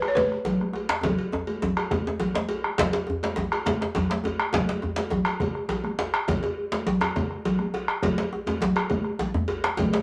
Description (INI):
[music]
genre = west african traditional, West African drum ensemble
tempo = 137 BPM (dotted quarters)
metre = 12/8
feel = straight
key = unclear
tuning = A4 = 444 Hz
[part]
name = balafon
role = melody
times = 0.0-2.4 s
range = B4 to C#5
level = -28 LUFS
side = equal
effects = none
[part]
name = bombo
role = percussion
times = 0.0-9.9 s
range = none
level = -30 LUFS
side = equal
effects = none
[part]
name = cowbell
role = percussion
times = 0.0-10.0 s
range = none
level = -33 LUFS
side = equal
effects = none
[part]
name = congas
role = percussion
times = 0.2-9.9 s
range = none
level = -31 LUFS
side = equal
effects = none
[part]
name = djembe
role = percussion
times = 0.2-9.9 s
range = none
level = -37 LUFS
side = equal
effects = none
[part]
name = djembe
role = percussion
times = 0.2-10.0 s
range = none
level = -32 LUFS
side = equal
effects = none
[sound]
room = wet studio ambience, RT60 0.4 s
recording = none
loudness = -26 LUFS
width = mono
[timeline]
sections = 0.0-2.8 A section; 2.8-10.0 B section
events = drum fill 1.0-2.8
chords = none